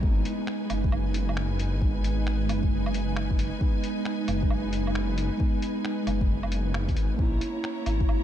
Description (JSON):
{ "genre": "future garage", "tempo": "134 BPM", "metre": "4/4", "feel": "swing 64% on 16ths", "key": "unclear", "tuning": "A4 = 440 Hz", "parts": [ { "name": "muted felt-like synth keys", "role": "accompaniment", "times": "0.0-8.2 s", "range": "G#3 to E4", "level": "-30 LUFS", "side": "right 3 dB", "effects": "chorus, sidechain pumping, diffuse ambient delay" }, { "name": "rich studio string section", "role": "sustained chords", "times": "0.0-8.2 s", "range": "D#4 to A#5", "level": "-36 LUFS", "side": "left 1 dB", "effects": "vintage 12-bit sampler grit, sidechain pumping" }, { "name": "swelling detuned saw bass", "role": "bass", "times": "0.0-8.2 s", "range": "F#1 to D#2", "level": "-28 LUFS", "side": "equal", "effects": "sidechain pumping" }, { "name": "electronic kick drum", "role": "drums", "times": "0.0-8.1 s", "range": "none", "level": "-26 LUFS", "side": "equal", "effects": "studio reverb" }, { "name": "lo-fi sampler-style drum kit", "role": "drums", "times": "0.3-8.2 s", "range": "finger snaps, hi-hat, woodblock", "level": "-39 LUFS", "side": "right 1 dB", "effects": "studio reverb" } ], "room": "light reverb", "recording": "none", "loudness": "-24 LUFS", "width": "side -11 dB against mid", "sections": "0.0-8.2 A section", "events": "none", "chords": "0.0 G#m; 7.2 A#dim", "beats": "| 0.03 0.48 0.92 1.37 | 1.82 2.27 2.71 3.16 | 3.61 4.06 4.51 4.95 | 5.40 5.85 6.30 6.75 | 7.19 7.64 8.09" }